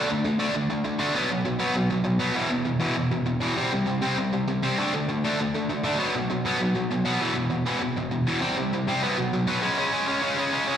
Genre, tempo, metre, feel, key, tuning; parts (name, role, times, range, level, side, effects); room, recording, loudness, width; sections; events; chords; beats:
punk; 198 BPM; 4/4; straight; A4 = 440 Hz
distorted electric guitar; solo; 0.0-10.8 s; E2 to D4; -23 LUFS; equal; overdrive, slapback echo
light reverb; live gig heard through the venue's PA, recital hall reverb; -23 LUFS; side -9 dB against mid
0.0-9.6 A section; 9.6-10.8 B section
0.0 D5; 1.2 B5; 2.4 E5; 3.6 C5; 4.8 D5; 6.0 B5; 7.2 E5; 8.4 C5; 9.0 B5; 9.6 C#5
0.25 0.56 0.86 | 1.16 1.46 1.76 2.06 | 2.37 2.67 2.97 3.27 | 3.58 3.88 4.18 4.49 | 4.79 5.09 5.39 5.70 | 6.00 6.30 6.61 6.91 | 7.21 7.51 7.82 8.12 | 8.42 8.73 9.03 9.33 | 9.63 9.94 10.24 10.54